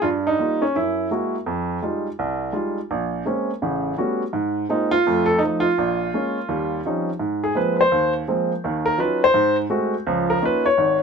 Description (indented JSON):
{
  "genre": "solo jazz",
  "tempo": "168 BPM",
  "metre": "4/4",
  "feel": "swing 63% on 8ths",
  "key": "Ab major",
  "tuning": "A4 = 439 Hz",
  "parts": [
    { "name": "clear upright piano", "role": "solo", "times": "0.0-11.0 s", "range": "Ab1 to Db5", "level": "-19 LUFS", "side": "right 1 dB", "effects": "none" }
  ],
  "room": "moderate studio ambience, RT60 0.5 s",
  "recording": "minimal, uncompressed stereo recording",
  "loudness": "-19 LUFS",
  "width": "side -6 dB against mid",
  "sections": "0.0-7.2 A section; 7.2-11.0 B section",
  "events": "upright piano solo 7.2-11.0",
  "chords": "0.0 Gm7b5; 0.7 Gb9; 1.5 Fm9; 2.9 Bbm9; 3.6 A13; 4.3 Ab69; 5.0 F7; 5.8 Bbm7; 6.5 Eb13; 7.2 Ab69; 8.6 Ebm9; 9.3 Ab7b9; 10.1 Db69"
}